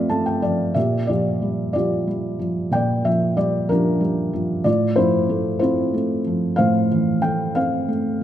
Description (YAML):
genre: classical, lyrical solo piano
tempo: 62 BPM (dotted quarters)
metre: 6/8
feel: rubato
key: unclear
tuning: A4 = 440 Hz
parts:
  - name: felt-muted upright piano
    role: solo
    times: 0.0-8.2 s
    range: A2 to A5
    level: -18 LUFS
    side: equal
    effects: none
room: moderate scoring stage reverb, RT60 1.8 s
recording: dark, warm production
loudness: -18 LUFS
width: side -11 dB against mid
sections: 0.8-8.2 A section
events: felt piano fill 0.0-0.8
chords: 0.0 Fmaj7/A; 0.8 Bb6; 4.6 Fmaj7/A